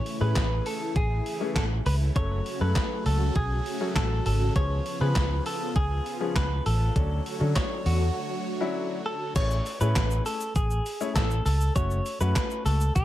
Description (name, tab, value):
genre	dance-pop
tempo	100 BPM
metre	4/4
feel	straight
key	unclear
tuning	A4 = 440 Hz
part	direct-recorded clean electric guitar	melody	0.0-13.0 s	F#4 to C#5	-32 LUFS	equal	digital delay
part	supersaw chords	sustained chords	0.0-9.3 s	C#3 to C#5	-34 LUFS	right 1 dB	phaser, sidechain pumping
part	gated 80s digital drum machine	drums	0.1-13.0 s	crash cymbal, handclaps, hi-hat, kick drum, shaker, snare drum	-29 LUFS	equal	gated reverb, gated reverb snare, overdrive
part	clear grand piano	accompaniment	0.2-12.8 s	E3 to C#5	-34 LUFS	left 5 dB	sidechain pumping
part	vintage muted fingered electric bass	bass	0.2-13.0 s	F#1 to D3	-25 LUFS	equal	sidechain pumping
room	little or no reverb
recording	none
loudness	-24 LUFS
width	side -14 dB against mid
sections	0.0-9.4 A section; 9.4-13.0 A section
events	break 8.2-9.4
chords	0.0 Amaj7; 2.2 F#m; 4.6 C#7; 7.0 Dmaj7; 9.4 Amaj7; 11.8 F#m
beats	0.36 0.96 1.56 | 2.16 2.76 3.36 3.96 | 4.56 5.16 5.76 6.36 | 6.96 7.56 8.16 8.76 | 9.36 9.96 10.56 11.16 | 11.76 12.36 12.96